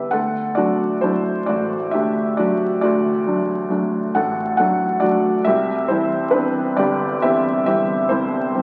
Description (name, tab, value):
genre	classical, lyrical solo piano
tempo	45 BPM (dotted quarters)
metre	6/8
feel	rubato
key	unclear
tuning	A4 = 440 Hz
part	felt-muted upright piano	solo	0.0-8.6 s	G1 to G5	-20 LUFS	equal	none
room	wet concert hall reverb, RT60 1.9 s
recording	very old 78 rpm record, vinyl crackle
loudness	-19 LUFS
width	mono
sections	0.1-8.6 A section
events	none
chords	0.1 D; 5.5 Cmaj7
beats	| 0.11 1.48 | 2.83 4.16 | 5.46 6.78 | 8.10